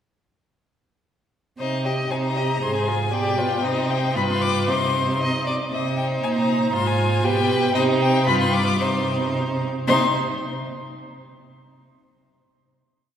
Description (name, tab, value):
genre	quick classical-period movement for string quartet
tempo	116 BPM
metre	2/4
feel	straight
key	C minor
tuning	A4 = 445 Hz
part	rich violin	melody	1.6-10.2 s	Eb5 to D6	-25 LUFS	left 4 dB	none
part	rich violin	second line	1.6-10.2 s	Ab4 to Eb5	-26 LUFS	left 1 dB	none
part	rich viola	accompaniment	1.6-10.2 s	Eb4 to Ab4	-27 LUFS	right 2 dB	none
part	rich cello	bass	1.6-10.2 s	G2 to C3	-24 LUFS	right 2 dB	none
room	wet church reverb, RT60 2.8 s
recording	recorded in a church or concert hall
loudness	-19 LUFS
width	side -9 dB against mid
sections	1.6-5.7 A section; 5.7-9.9 A section; 9.9-10.9 final chord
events	none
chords	1.6 Cm; 2.6 Fm/Ab; 3.1 G7/B; 3.6 Cm; 4.2 G7; 4.7 Cm; 6.7 Fm/Ab; 7.2 G/B; 7.7 Cm; 8.3 G7; 8.8 Cm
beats	| 1.59 2.11 | 2.62 3.13 | 3.64 4.16 | 4.68 5.20 | 5.72 6.23 | 6.73 7.24 | 7.75 8.27 | 8.80 9.35 | 9.88